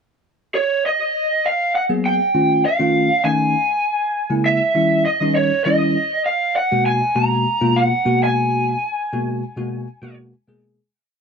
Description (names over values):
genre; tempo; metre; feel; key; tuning
jazz; 100 BPM; 4/4; straight; G# dorian; A4 = 442 Hz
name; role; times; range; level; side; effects
lead guitar through a small cranked amp; melody; 0.6-10.1 s; C#5 to A#5; -18 LUFS; right 1 dB; overdrive
bell-like tine electric piano; accompaniment; 1.9-10.8 s; B2 to G#4; -19 LUFS; left 1 dB; lush chorus
room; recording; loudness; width
moderate studio ambience, RT60 0.5 s; none; -16 LUFS; side -6 dB against mid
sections
0.0-1.1 pickup bar; 1.1-10.8 A section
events
fade-out 8.4-10.8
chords
0.0 N.C.; 1.1 G#m9; 2.3 F7b13; 3.5 A#m7b5; 4.7 D#7b9; 6.0 G#m9